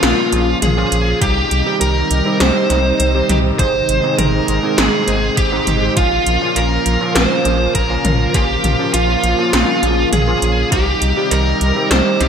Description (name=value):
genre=synthwave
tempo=101 BPM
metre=4/4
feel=straight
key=Bb dorian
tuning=A4 = 442 Hz
part: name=biting lead guitar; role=melody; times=0.0-12.3 s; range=F4 to C5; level=-17 LUFS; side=right 1 dB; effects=overdrive, ping-pong delay, shimmer reverb
part: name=lush unison pad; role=sustained chords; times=0.0-12.3 s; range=C3 to F4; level=-21 LUFS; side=equal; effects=chorus, sidechain pumping, shimmer reverb
part: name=warm electric grand piano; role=stabs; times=0.0-12.3 s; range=Ab2 to C5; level=-22 LUFS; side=right 2 dB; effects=wide subtle chorus, shimmer reverb
part: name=round analog bass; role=bass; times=0.0-12.3 s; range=Ab1 to C2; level=-18 LUFS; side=equal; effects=sidechain pumping
part: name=80s electronic pad drums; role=drums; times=0.0-12.3 s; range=hi-hat, snare drum, toms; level=-19 LUFS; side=equal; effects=gated reverb on snare and toms, gated reverb
part: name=electronic kick drum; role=drums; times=1.2-10.8 s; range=none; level=-20 LUFS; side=equal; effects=none
room=moderate plate reverb, RT60 1.6 s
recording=bright 1980s-style digital production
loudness=-13 LUFS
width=side -7 dB against mid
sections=0.0-12.3 A section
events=none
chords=0.0 Bbm; 1.2 Cm; 3.6 Ab; 6.0 Bbm; 10.7 Cm